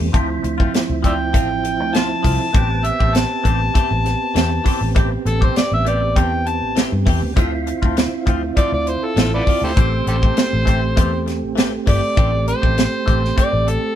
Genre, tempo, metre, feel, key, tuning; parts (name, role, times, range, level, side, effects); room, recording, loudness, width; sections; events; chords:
straight-eighth soul blues; 100 BPM; 4/4; straight; A minor; A4 = 440 Hz
percussive tonewheel organ; accompaniment; 0.0-14.0 s; F3 to G4; -24 LUFS; right 6 dB; overdrive, chorus vibrato, fast rotary speaker
direct-recorded clean electric guitar; stabs; 0.0-13.7 s; E3 to G4; -27 LUFS; left 5 dB; phaser
vintage muted fingered electric bass; bass; 0.0-13.8 s; G1 to G2; -21 LUFS; equal
tight funk drum kit; drums; 0.1-13.8 s; hi-hat, kick drum, snare drum; -18 LUFS; equal
overdriven harmonica; melody; 1.1-14.0 s; G4 to A5; -21 LUFS; left 1 dB
light reverb; band playing live in one room; -15 LUFS; side -10 dB against mid
0.0-14.0 A section
harmonica solo 0.0-14.0
0.1 Dm7; 2.5 Am7; 7.4 Dm7; 9.8 Am7